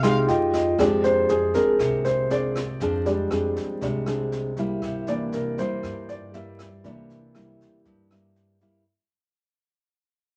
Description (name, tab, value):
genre	bossa nova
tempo	119 BPM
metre	4/4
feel	straight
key	F dorian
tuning	A4 = 440 Hz
part	clear baby grand piano	accompaniment	0.0-8.9 s	E3 to C6	-27 LUFS	equal	none
part	nylon-string guitar	accompaniment	0.0-8.8 s	G2 to Ab4	-28 LUFS	equal	none
part	upright bass	bass	0.0-8.8 s	C2 to G2	-34 LUFS	equal	none
part	jazz brush drum kit	drums	0.0-8.7 s	kick drum, rim click, snare drum	-40 LUFS	equal	none
room	moderate studio reverb, RT60 0.5 s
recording	vinyl crackle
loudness	-24 LUFS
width	mono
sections	0.8-8.9 A section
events	grand piano fill 0.0-0.8; fade-out 0.8-8.9; grand piano solo 0.8-8.9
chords	0.3 Fm9; 0.8 Fm6; 4.8 C7